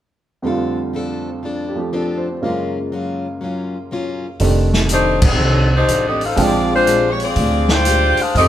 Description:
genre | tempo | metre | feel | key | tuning
jazz, big band swing | 122 BPM | 4/4 | swing 66% on 8ths | F mixolydian | A4 = 439 Hz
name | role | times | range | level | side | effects
clear grand piano | accompaniment | 0.4-7.8 s | F2 to G5 | -22 LUFS | right 2 dB | none
picked plugged-in steel-string acoustic guitar | accompaniment | 0.4-8.5 s | F2 to A4 | -25 LUFS | left 2 dB | none
upright bass | bass | 4.4-8.5 s | F1 to F2 | -18 LUFS | equal | none
vintage drum kit | drums | 4.4-8.5 s | crash cymbal, hi-hat, kick drum, snare drum | -20 LUFS | equal | none
clear saxophone section | melody | 4.9-8.5 s | G3 to G5 | -16 LUFS | left 1 dB | none
room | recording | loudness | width
moderate large studio reverb, RT60 1.4 s | band playing live in one room | -15 LUFS | side -11 dB against mid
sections
0.4-4.4 A section; 4.4-8.5 B section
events
band accent 5.1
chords
0.4 F6; 2.4 Gbmaj7; 4.4 F13; 6.4 Bb13

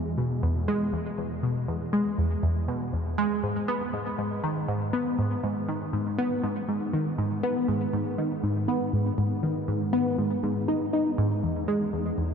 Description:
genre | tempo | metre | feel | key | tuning
ambient | 120 BPM | 4/4 | straight | G# minor | A4 = 440 Hz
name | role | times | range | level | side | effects
tight sequenced synth | solo | 0.0-12.3 s | E2 to D#4 | -25 LUFS | equal | chorus, tape echo
room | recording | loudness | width
wet huge ambient reverb, RT60 8.1 s | dark, warm production | -25 LUFS | side -6 dB against mid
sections
0.0-12.3 A section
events
none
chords
none

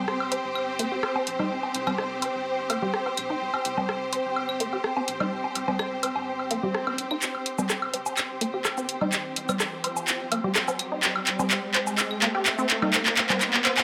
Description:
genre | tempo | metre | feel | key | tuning
minimal techno | 126 BPM | 4/4 | straight | unclear | A4 = 440 Hz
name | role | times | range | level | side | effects
round analog bass | bass | 0.0-6.7 s | G1 to C2 | -49 LUFS | equal | high-pass filter
clear symphonic string section | texture | 0.0-13.8 s | C4 to C5 | -33 LUFS | equal | none
punchy analog drum machine | drums | 0.1-13.8 s | cabasa, handclaps, hi-hat, rim click | -27 LUFS | equal | none
woodblock, claves and congas | percussion | 0.2-13.8 s | none | -34 LUFS | equal | delay
resonant blip pluck | riff | 0.3-13.7 s | Bb3 to C5 | -35 LUFS | equal | chorus, digital delay
swell and riser | sound effects | 6.5-13.8 s | none | -37 LUFS | equal | none
room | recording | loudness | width
moderate lush hall reverb, RT60 1.6 s | none | -26 LUFS | mono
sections
0.0-7.2 A section; 7.2-13.8 B section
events
swell 6.5-7.2; build-up 7.2-13.8; drum fill 7.2-13.8; riser 7.2-13.8; filter sweep on synth pluck 7.2-13.8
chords
0.0 C5

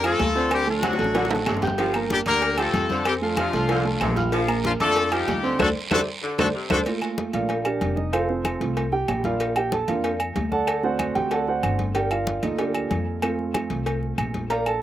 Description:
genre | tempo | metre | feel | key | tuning
latin, salsa | 189 BPM | 4/4 | straight | G minor | A4 = 437 Hz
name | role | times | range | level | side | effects
brilliant horn section | melody | 0.0-6.8 s | F3 to Bb4 | -24 LUFS | left 3 dB | slapback echo
bright saxophone section | second line | 0.0-6.7 s | C3 to F3 | -31 LUFS | left 2 dB | slapback echo
dark concert grand piano | accompaniment | 0.0-14.8 s | F3 to G6 | -25 LUFS | right 3 dB | none
upright bass | bass | 0.0-14.8 s | F1 to F2 | -29 LUFS | left 1 dB | none
agogo bells and timbales | percussion | 0.0-14.8 s | none | -31 LUFS | right 2 dB | slapback echo
claves | percussion | 0.0-14.8 s | none | -33 LUFS | left 7 dB | none
congas | percussion | 0.0-14.8 s | none | -32 LUFS | left 4 dB | none
cowbell and bongos | percussion | 0.2-14.7 s | none | -33 LUFS | left 5 dB | slapback echo
guiro | percussion | 0.2-6.8 s | none | -38 LUFS | right 5 dB | none
room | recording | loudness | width
little or no reverb | recorded outdoors, with no room sound | -21 LUFS | side -12 dB against mid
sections
0.0-6.9 A section; 6.9-14.8 B section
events
drum fill 0.8-1.8, 6.4-6.9; band accent 5.6-6.9; grand piano solo 6.9-14.8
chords
0.0 Bb (rootless); 0.5 D7; 1.8 Gm7; 3.1 F; 4.3 Bb; 5.6 D7(no3); 6.9 Gm7; 8.1 F; 9.4 Bb; 10.7 D7; 12.0 Gm7; 13.2 F

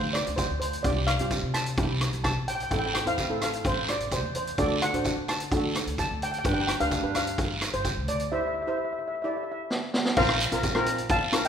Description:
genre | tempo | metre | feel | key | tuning
calypso | 129 BPM | 4/4 | straight | unclear | A4 = 436 Hz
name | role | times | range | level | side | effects
steel pan | melody | 0.0-11.5 s | C5 to A5 | -30 LUFS | left 1 dB | none
steel pan | accompaniment | 0.0-11.5 s | B3 to D5 | -31 LUFS | right 2 dB | none
upright bass | bass | 0.0-11.3 s | G1 to D3 | -33 LUFS | equal | none
street-band drum kit | drums | 0.1-11.5 s | crash cymbal, hi-hat, kick drum, rim click, snare drum | -29 LUFS | equal | none
guiro | percussion | 0.2-11.4 s | none | -34 LUFS | right 3 dB | none
room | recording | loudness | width
moderate concert hall reverb, RT60 2.1 s | minimal, uncompressed stereo recording | -25 LUFS | side -8 dB against mid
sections
0.0-10.2 A section; 10.2-11.5 B section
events
drum fill 9.7-10.2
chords
0.0 G/D; 0.8 Csus4; 1.8 C; 2.7 Am; 4.6 D7; 6.4 G; 8.3 Cadd9; 10.2 Bbsus2

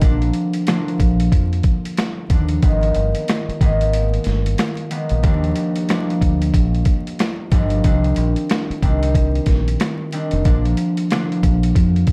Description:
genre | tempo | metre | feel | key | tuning
hip hop, boom-bap hip-hop | 92 BPM | 4/4 | swing 61% on 16ths | Eb major | A4 = 442 Hz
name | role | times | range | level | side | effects
concert harp | accompaniment | 0.0-12.1 s | Eb2 to D4 | -23 LUFS | equal | cassette tape, high-pass filter, low-pass filter
deep dub fingered electric bass | bass | 0.0-12.0 s | F1 to F2 | -21 LUFS | equal | none
boom bap sampler-style drum kit | drums | 0.0-12.1 s | hi-hat, kick drum, snare drum | -21 LUFS | equal | none
room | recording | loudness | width
moderate studio reverb, RT60 0.5 s | dark, warm production, vinyl crackle | -18 LUFS | mono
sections
0.0-12.1 A section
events
break 3.9-5.2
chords
0.0 Bb; 2.6 Abmadd9; 5.2 Ebmaj7; 7.8 Cmadd9; 10.5 Bb

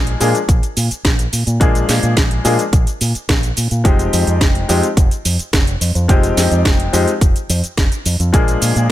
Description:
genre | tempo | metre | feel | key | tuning
nu-disco, nu disco | 107 BPM | 4/4 | straight | F dorian | A4 = 440 Hz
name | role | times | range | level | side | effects
clear grand piano | accompaniment | 0.0-8.9 s | F3 to Ab4 | -18 LUFS | left 3 dB | sidechain pumping, ping-pong delay
fingered electric bass with an envelope filter | bass | 0.0-8.9 s | F1 to Bb2 | -17 LUFS | equal | sidechain pumping
house drum kit | drums | 0.1-8.9 s | cabasa, hi-hat, snare drum | -20 LUFS | right 1 dB | none
electronic kick drum | drums | 0.5-8.4 s | none | -14 LUFS | equal | none
room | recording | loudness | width
little or no reverb | none | -13 LUFS | side -14 dB against mid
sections
0.0-8.9 A section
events
none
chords
0.0 Bb7; 3.9 Fm9; 8.3 Bb7

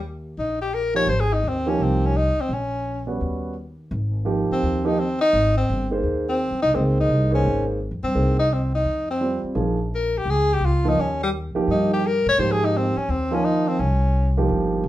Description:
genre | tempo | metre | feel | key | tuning
jazz | 170 BPM | 4/4 | swing 66% on 8ths | Ab major | A4 = 440 Hz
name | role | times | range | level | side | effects
upright bass | bass | 0.0-14.9 s | G1 to A2 | -24 LUFS | equal | none
warm tenor saxophone | melody | 0.4-14.4 s | G3 to Db5 | -22 LUFS | left 1 dB | none
warm grand piano | accompaniment | 0.9-14.8 s | F3 to C5 | -24 LUFS | right 3 dB | none
room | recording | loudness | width
wet studio reverb, RT60 0.6 s | heard from further back in the room | -19 LUFS | side -14 dB against mid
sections
0.0-3.9 A section; 3.9-14.9 A section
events
none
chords
0.0 Eb5; 1.1 Abmaj7; 2.5 Bbm; 3.2 Eb7alt; 3.9 Abmaj7; 5.3 Ab; 6.7 Dbmaj7(no3); 8.1 Cm7; 8.8 F5; 9.6 Bbm7; 11.0 Eb; 12.4 Abmaj7

